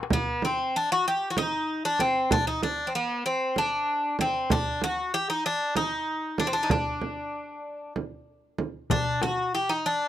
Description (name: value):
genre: Turkish makam ensemble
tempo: 191 BPM (eighths)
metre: 7/8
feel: straight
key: D makam hicaz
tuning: A4 = 441 Hz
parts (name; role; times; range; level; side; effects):
- darbuka; percussion; 0.0-0.1, 8.9-9.4 s; none; -30 LUFS; left 5 dB; none
- Greek bouzouki; melody; 0.1-10.1 s; B3-40c to G4; -25 LUFS; left 1 dB; none
- frame drum; percussion; 0.1-9.4 s; none; -28 LUFS; right 3 dB; none
room: small room ambience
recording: dry, close 1970s-style studio recording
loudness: -24 LUFS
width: side -12 dB against mid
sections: 0.1-10.1 A section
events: none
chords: none